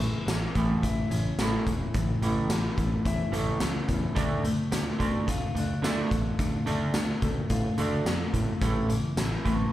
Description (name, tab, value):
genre	indie rock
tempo	108 BPM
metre	4/4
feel	straight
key	A major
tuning	A4 = 443 Hz
part	electric guitar through a small old amp	riff	0.0-9.7 s	A2 to F4	-33 LUFS	left 4 dB	slapback echo
part	electric guitar through a small old amp	riff	0.0-9.7 s	A2 to D4	-31 LUFS	right 3 dB	lush chorus, slapback echo
part	growling fingered electric bass	bass	0.0-9.6 s	E1 to A2	-31 LUFS	equal	overdrive
part	raw garage drum kit	drums	0.0-9.6 s	hi-hat, kick drum, snare drum, tambourine	-29 LUFS	equal	none
room	light reverb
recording	live gig heard through the venue's PA, club reverb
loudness	-25 LUFS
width	side -14 dB against mid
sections	0.0-9.7 A section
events	none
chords	0.0 A; 4.2 Dm; 8.6 A5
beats	0.27 0.83 1.38 | 1.94 2.50 3.05 3.61 | 4.17 4.72 5.28 5.84 | 6.39 6.95 7.51 8.07 | 8.62 9.18